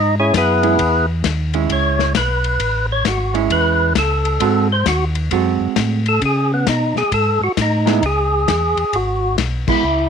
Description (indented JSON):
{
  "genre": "soul jazz organ trio",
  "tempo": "133 BPM",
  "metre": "4/4",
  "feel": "swing 65% on 8ths",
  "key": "C# minor",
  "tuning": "A4 = 438 Hz",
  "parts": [
    { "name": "percussive tonewheel organ", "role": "melody", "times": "0.0-10.1 s", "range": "B3 to D#5", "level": "-17 LUFS", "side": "equal", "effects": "slow rotary speaker, overdrive" },
    { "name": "mellow tonewheel organ", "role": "bass", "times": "0.0-10.1 s", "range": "G#1 to C#3", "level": "-20 LUFS", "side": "equal", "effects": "slow rotary speaker" },
    { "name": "warm soul drum kit", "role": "drums", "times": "0.3-9.8 s", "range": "crash cymbal, hi-hat, kick drum, ride cymbal, snare drum", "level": "-23 LUFS", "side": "left 8 dB", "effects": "none" },
    { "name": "vintage hollow-body jazz guitar", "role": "accompaniment", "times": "0.6-9.8 s", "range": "G#3 to A4", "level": "-19 LUFS", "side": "right 14 dB", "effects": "none" }
  ],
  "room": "light reverb, small room ambience",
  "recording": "1960s-style stereo with parts hard left and right",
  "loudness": "-14 LUFS",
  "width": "side -7 dB against mid",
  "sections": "0.0-8.0 A section; 8.0-10.1 B section",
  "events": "tonewheel organ solo 0.0-8.0; band accent 9.6",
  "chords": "0.0 C#m7; 0.8 Amaj7; 4.4 G#7b9; 6.2 B69; 7.1 G#5; 8.0 C#m7"
}